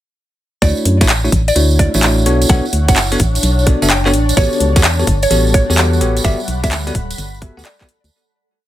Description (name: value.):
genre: UK garage, two-step garage.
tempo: 128 BPM.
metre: 4/4.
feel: swing 67% on 16ths.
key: D major.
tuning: A4 = 440 Hz.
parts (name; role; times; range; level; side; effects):
mallet-like synth pluck; melody; 0.6-8.0 s; C#5 to G5; -21 LUFS; right 1 dB; chorus, digital delay.
bell-like tine electric piano; stabs; 0.6-7.9 s; A3 to F#5; -19 LUFS; left 1 dB; digital delay.
organ-like FM bass; bass; 0.6-8.1 s; D1 to F#2; -15 LUFS; equal; none.
electronic kick drum; drums; 0.6-7.9 s; none; -14 LUFS; equal; studio reverb.
garage drum kit; drums; 0.6-8.1 s; handclaps, hi-hat, rim click; -18 LUFS; left 1 dB; studio reverb.
tambourine; percussion; 0.6-8.1 s; none; -24 LUFS; right 5 dB; none.
granular cloud pad; texture; 1.7-8.1 s; G3 to B5; -23 LUFS; left 2 dB; built-in reverb, sidechain pumping.
room: light reverb.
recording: none.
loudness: -11 LUFS.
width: side -13 dB against mid.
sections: 0.6-8.1 drop.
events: drop 0.6-8.1; fade-out 5.6-8.1.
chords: 0.6 Dmaj9; 2.3 Bm9; 4.1 A13; 6.2 Gmaj9.